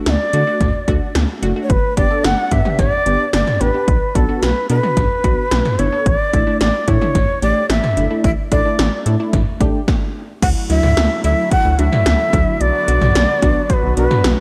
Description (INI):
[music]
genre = synth-pop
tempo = 110 BPM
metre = 4/4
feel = straight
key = unclear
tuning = A4 = 440 Hz
[part]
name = funky polysynth comp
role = accompaniment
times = 0.0-14.3 s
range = F#3 to A4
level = -25 LUFS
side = equal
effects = chorus
[part]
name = breathy mellow shakuhachi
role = melody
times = 0.1-14.4 s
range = A4 to F#5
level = -21 LUFS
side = equal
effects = slapback echo
[part]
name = rubbery square bass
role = bass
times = 0.1-14.3 s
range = F#1 to D3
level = -21 LUFS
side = equal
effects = none
[part]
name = 80s electronic pad drums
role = drums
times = 0.1-14.4 s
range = crash cymbal, hi-hat, kick drum, snare drum, toms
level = -20 LUFS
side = equal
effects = gated reverb on snare and toms, gated reverb
[part]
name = brassy analog pad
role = sustained chords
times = 10.4-14.4 s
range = D3 to F#4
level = -28 LUFS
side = equal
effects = chorus
[sound]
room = light reverb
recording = none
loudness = -16 LUFS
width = mono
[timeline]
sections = 0.0-10.4 A section; 10.4-14.4 B section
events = stop 9.9-10.4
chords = 0.0 D; 1.7 G; 3.9 Bm; 6.1 Asus4; 10.4 Dadd9; 12.6 Bm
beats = 0.06 0.61 1.15 | 1.70 2.24 2.79 3.33 | 3.88 4.42 4.97 5.52 | 6.06 6.61 7.15 7.70 | 8.24 8.79 9.33 9.88 | 10.43 10.97 11.52 12.06 | 12.61 13.15 13.70 14.24